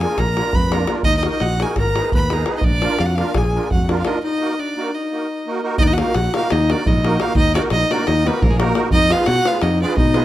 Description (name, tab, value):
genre	balkan folk, Balkan wedding band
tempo	343 BPM (eighths)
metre	9/8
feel	straight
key	Eb harmonic minor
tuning	A4 = 440 Hz
part	clear violin	melody	0.0-10.2 s	Ab4 to Cb6	-22 LUFS	right 2 dB	none
part	dark clarinet	second line	0.0-10.2 s	Ab3 to Cb5	-23 LUFS	left 3 dB	none
part	musette accordion	accompaniment	0.0-10.2 s	Bb3 to Cb5	-25 LUFS	right 3 dB	none
part	modern bright fingered electric bass	bass	0.0-10.2 s	Ab1 to Cb3	-21 LUFS	equal	none
part	davul	percussion	0.0-10.2 s	none	-21 LUFS	equal	none
room	moderate recital hall reverb, RT60 1.4 s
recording	close, detailed microphones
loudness	-16 LUFS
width	side -14 dB against mid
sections	0.0-5.8 A section; 5.8-10.2 B section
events	break 4.2-5.8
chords	0.0 Bb; 1.0 Ebm; 1.8 Abm; 2.6 Bb; 4.2 Ebm; 8.9 Fdim